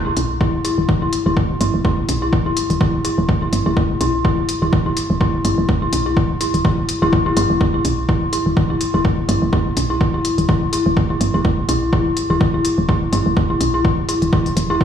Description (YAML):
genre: minimal techno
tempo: 125 BPM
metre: 4/4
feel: swing 56% on 16ths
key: E minor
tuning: A4 = 441 Hz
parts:
  - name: woody FM bass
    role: bass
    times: 0.0-14.8 s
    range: D1 to B1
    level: -19 LUFS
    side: equal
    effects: sidechain pumping
  - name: dark detuned synth bell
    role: riff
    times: 0.1-14.7 s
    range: E4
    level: -20 LUFS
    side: left 1 dB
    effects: chorus, sidechain pumping, digital delay
  - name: electronic hi-hat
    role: drums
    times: 0.2-14.7 s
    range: none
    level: -26 LUFS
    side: left 2 dB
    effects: none
  - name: electronic kick drum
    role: drums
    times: 0.4-14.8 s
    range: none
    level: -18 LUFS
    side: equal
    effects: none
room: light reverb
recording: played on a big sound system in a bare room, large studio reverb, studio ambience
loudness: -15 LUFS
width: side -8 dB against mid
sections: 0.0-14.8 A section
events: none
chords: none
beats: 0.41 0.89 1.37 | 1.85 2.33 2.81 3.29 | 3.77 4.25 4.73 5.21 | 5.69 6.17 6.65 7.13 | 7.61 8.09 8.57 9.05 | 9.53 10.01 10.49 10.97 | 11.45 11.93 12.41 12.89 | 13.37 13.85 14.33 14.81